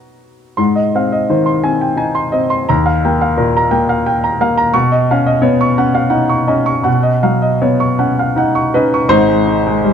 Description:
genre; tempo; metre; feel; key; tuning
neoclassical minimalist piano; 78-89 BPM; 3/4; rubato; unclear; A4 = 444 Hz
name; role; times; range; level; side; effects
clear grand piano; solo; 0.0-9.9 s; Ab1 to C#6; -11 LUFS; equal; none
room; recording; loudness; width
light reverb; close, detailed microphones; -11 LUFS; side -8 dB against mid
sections
0.6-9.1 A section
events
none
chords
0.0 B; 0.6 Ab; 2.7 Ebadd9; 4.7 Badd9; 9.1 Ab

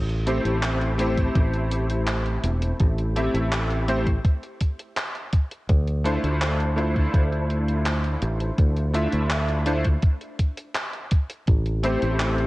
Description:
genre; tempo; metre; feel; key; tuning
vaporwave; 83 BPM; 4/4; straight; A minor; A4 = 440 Hz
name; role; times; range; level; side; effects
fingered electric bass; bass; 0.0-12.5 s; E1 to D2; -24 LUFS; equal; tube saturation
gated 80s digital drum machine; drums; 0.1-12.5 s; handclaps, hi-hat; -30 LUFS; equal; gated reverb
bright electric grand piano; accompaniment; 0.3-12.5 s; A3 to E5; -26 LUFS; equal; ensemble chorus, vintage 12-bit sampler grit, analog delay
electronic kick drum; drums; 1.2-11.6 s; none; -20 LUFS; equal; none
warbly tape-like pad; sustained chords; 12.1-12.5 s; A3 to G4; -33 LUFS; left 2 dB; none
room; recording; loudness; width
light reverb, digital ambience; cassette tape; -21 LUFS; side -19 dB against mid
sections
0.0-12.5 A section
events
none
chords
0.0 Am7; 5.3 Dm9; 11.5 Am7

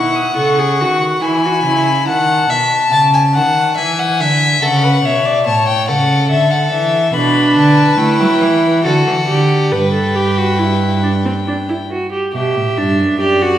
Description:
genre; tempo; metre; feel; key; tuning
classical, baroque-style fugue for string quartet; 70 BPM; 3/4; straight; G major from 7.1 s; A4 = 440 Hz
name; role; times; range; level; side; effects
rich violin; melody; 0.0-13.6 s; D5 to D#6; -17 LUFS; left 5 dB; none
warm violin; second line; 0.0-11.9 s; A4 to A5; -18 LUFS; left 2 dB; none
warm viola; accompaniment; 0.0-2.1, 7.1-13.6 s; C4 to B4; -15 LUFS; right 2 dB; none
warm cello; bass; 0.0-13.6 s; F#2 to A3; -17 LUFS; right 2 dB; none
room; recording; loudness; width
wet recital hall reverb, RT60 1.5 s; heard from further back in the room; -11 LUFS; side -11 dB against mid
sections
0.0-12.3 A section; 12.3-13.6 B section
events
none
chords
0.0 B7; 1.2 E; 2.1 B7; 3.8 E; 4.6 A; 6.3 D; 7.1 Bm7; 8.0 A5; 8.8 D; 9.7 G

